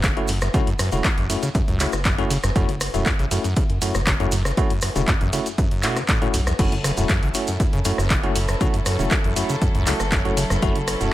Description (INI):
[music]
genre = acid house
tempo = 119 BPM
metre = 4/4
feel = straight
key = F# minor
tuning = A4 = 440 Hz
[part]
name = acid bass, saw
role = riff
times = 0.0-11.1 s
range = E2 to C#3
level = -26 LUFS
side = equal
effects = tube saturation, tape echo
[part]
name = round analog bass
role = bass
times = 0.0-11.1 s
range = E1 to F#2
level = -26 LUFS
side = equal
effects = sidechain pumping
[part]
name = electronic kick drum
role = drums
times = 0.0-10.7 s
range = none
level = -22 LUFS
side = equal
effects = none
[part]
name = punchy analog drum machine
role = drums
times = 0.0-11.1 s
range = crash cymbal, handclaps, hi-hat, ride cymbal, rim click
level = -26 LUFS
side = equal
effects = none
[part]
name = maracas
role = percussion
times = 0.0-11.1 s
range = none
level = -32 LUFS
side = right 2 dB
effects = none
[part]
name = bell-like tine electric piano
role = stabs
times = 0.2-11.1 s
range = A3 to F#4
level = -27 LUFS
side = left 1 dB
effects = medium stereo tremolo, tape echo
[part]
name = rich chamber string section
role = sustained chords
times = 6.6-11.1 s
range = F#3 to A4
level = -29 LUFS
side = equal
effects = sidechain pumping
[sound]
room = light reverb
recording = none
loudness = -18 LUFS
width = side -15 dB against mid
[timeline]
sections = 0.0-11.1 A section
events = none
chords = 0.0 F#m7